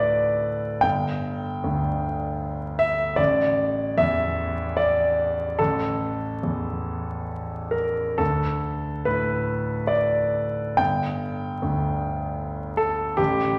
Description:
classical, impressionist solo piano; 64-79 BPM; 3/4; rubato; A4 = 440 Hz
clear concert grand piano; solo; 0.0-13.6 s; G1 to G5; -24 LUFS; equal
wet recital hall reverb, RT60 1.5 s; vinyl crackle; -25 LUFS; mono
0.0-13.6 A section
0.0 D5; 0.8 G5; 3.2 A5; 8.2 D5; 10.8 G5
| 0.84 1.65 2.42 | 3.19 3.98 4.78 | 5.59 6.44 7.31 | 8.20 9.07 9.90 | 10.79 11.61 12.40 | 13.18

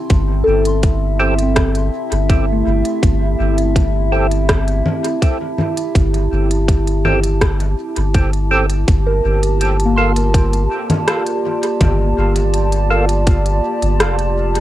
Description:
ambient dub; 82 BPM; 4/4; straight; G dorian; A4 = 441 Hz
warbly tape-like pad; sustained chords; 0.0-14.6 s; Bb3 to A5; -20 LUFS; equal; chorus, built-in reverb, cassette tape
soft synth bell; arpeggios; 0.0-14.6 s; A3 to C6; -23 LUFS; left 2 dB; chorus, phaser, cassette tape, dub echo
soft dub sub bass; bass; 0.1-14.6 s; F1 to G1; -17 LUFS; equal; transformer saturation
electronic kick drum; drums; 0.1-13.4 s; -14 LUFS; equal; cassette tape
organic electronic drum kit; drums; 0.1-14.6 s; congas, hi-hat, rim click; -21 LUFS; left 1 dB; cassette tape, dub echo
percussive tonewheel organ; stabs; 1.2-13.1 s; Bb3 to A4; -21 LUFS; right 2 dB; chorus vibrato, slow rotary speaker, cassette tape, dub echo, plate reverb
light reverb; home recording on cassette; -13 LUFS; side -14 dB against mid
0.0-8.9 A section; 8.9-14.6 B section
0.0 Am7/G; 8.9 Gm9
| 0.10 0.83 1.56 2.29 | 3.03 3.76 4.49 5.22 | 5.95 6.68 7.42 8.15 | 8.88 9.61 10.34 11.07 | 11.81 12.54 13.27 14.00

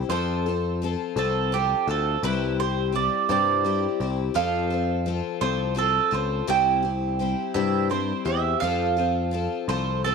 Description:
folk rock and heartland rock; 56 BPM (dotted quarters); 6/8; straight; A4 = 439 Hz
picked twelve-string acoustic guitar; accompaniment; 0.0-10.1 s; C3 to A4; -27 LUFS; left 13 dB
picked electric bass; bass; 0.0-10.1 s; C2 to G2; -28 LUFS; equal
mandolin; melody; 0.1-10.1 s; G4 to G5; -25 LUFS; right 13 dB
light reverb, studio ambience; 1960s-style stereo with parts hard left and right; -22 LUFS; side -5 dB against mid
0.0-10.1 A section
0.1 F; 2.2 C; 4.4 F; 6.5 C; 8.6 F
| 0.10 1.17 | 2.23 3.29 | 4.36 5.42 | 6.49 7.55 | 8.62 9.68

